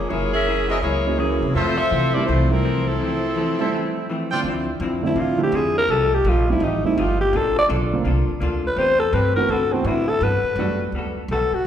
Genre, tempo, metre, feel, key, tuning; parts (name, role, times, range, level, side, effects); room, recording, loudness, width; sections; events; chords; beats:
jazz, big band swing; 166 BPM; 4/4; swing 64% on 8ths; F major, D minor from 4.4 s; A4 = 440 Hz
clear saxophone section; melody; 0.0-4.1 s; Fb3 to Fb5; -22 LUFS; left 1 dB
upright bass; bass; 0.0-11.5 s; Gb1 to C3; -24 LUFS; equal
vintage hollow-body jazz guitar; accompaniment; 0.1-11.6 s; F2 to B4; -27 LUFS; left 2 dB
clear trumpet section; stabs; 0.7-4.4 s; E4 to G5; -26 LUFS; right 1 dB
warm grand piano; accompaniment; 1.1-10.8 s; D3 to F#4; -27 LUFS; right 5 dB
growling alto saxophone; melody; 5.1-11.7 s; C4 to D5; -20 LUFS; left 1 dB
wet recital hall reverb, RT60 1.6 s; recorded in a church or concert hall; -18 LUFS; side -9 dB against mid
0.0-4.4 A section; 4.4-11.7 B section
break 3.0-4.4; alto saxophone solo 4.4-11.7
0.1 Gb9; 1.6 Fmaj7; 4.4 Dm9; 5.9 F9; 7.3 Bbmaj7; 8.8 Am9; 9.5 D13; 10.2 Gmaj9
| 0.11 0.47 0.83 1.20 | 1.56 1.92 2.28 2.64 | 3.00 3.36 3.72 4.08 | 4.45 4.81 5.17 5.53 | 5.89 6.25 6.61 6.97 | 7.33 7.69 8.05 8.41 | 8.77 9.13 9.49 9.86 | 10.22 10.58 10.94 11.30 | 11.66